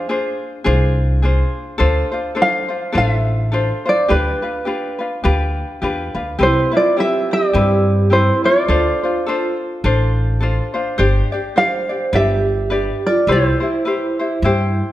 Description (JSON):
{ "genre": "Hawaiian", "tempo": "105 BPM", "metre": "4/4", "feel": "swing 58% on 8ths", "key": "C major", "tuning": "A4 = 441 Hz", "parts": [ { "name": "tenor ukulele", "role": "melody", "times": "0.0-14.9 s", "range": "Ab4 to F5", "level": "-18 LUFS", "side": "right 1 dB", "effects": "none" }, { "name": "ukulele", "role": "accompaniment", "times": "0.0-14.9 s", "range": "C4 to D5", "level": "-20 LUFS", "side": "left 2 dB", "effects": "none" }, { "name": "upright bass", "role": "bass", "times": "0.7-14.8 s", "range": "G1 to G2", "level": "-17 LUFS", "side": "equal", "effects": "none" }, { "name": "vibraphone with medium mallets", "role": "second line", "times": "6.4-14.9 s", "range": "E4 to C5", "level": "-21 LUFS", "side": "right 3 dB", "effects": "none" } ], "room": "moderate recital hall reverb, RT60 1.7 s", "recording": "none", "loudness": "-15 LUFS", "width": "side -14 dB against mid", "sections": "0.0-14.9 A section", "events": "none", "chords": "0.0 Fm6; 1.8 Dm7; 4.1 G7/D; 6.4 Cmaj7; 8.7 Dm7; 11.0 Gsus4; 12.1 G; 13.3 Cmaj7" }